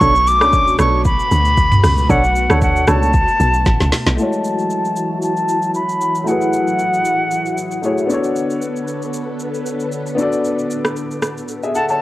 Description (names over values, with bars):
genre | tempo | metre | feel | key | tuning
amapiano | 115 BPM | 4/4 | swing 55% on 16ths | F# minor | A4 = 440 Hz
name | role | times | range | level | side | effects
jazz flute | melody | 0.0-8.1, 11.8-12.0 s | F#5 to D6 | -17 LUFS | left 1 dB | low-pass filter, cassette tape, tape echo
string machine, violas | sustained chords | 0.0-12.0 s | B2 to B4 | -24 LUFS | equal | phaser, ensemble chorus, sidechain pumping, low-pass filter
percussive organ stab | stabs | 0.0-3.1 s | C#4 to C#5 | -22 LUFS | right 2 dB | chorus, tape echo
deep log drum bass | bass | 0.0-4.2 s | A1 to D2 | -17 LUFS | equal | none
afro-pop drum kit | drums | 0.0-12.0 s | hi-hat, kick drum, rim click, shaker, snare drum, toms | -19 LUFS | equal | overdrive
warm concert grand piano | accompaniment | 4.1-12.0 s | G#3 to A5 | -21 LUFS | left 2 dB | low-pass filter
room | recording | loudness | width
light reverb, digital ambience | home recording on cassette | -14 LUFS | side -16 dB against mid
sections
0.0-4.2 A section; 4.2-12.0 B section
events
drop 0.0-4.2; drum fill 3.7-4.2; filter sweep 4.2-12.0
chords
0.0 Bm9; 4.2 F#m9; 8.1 Bm9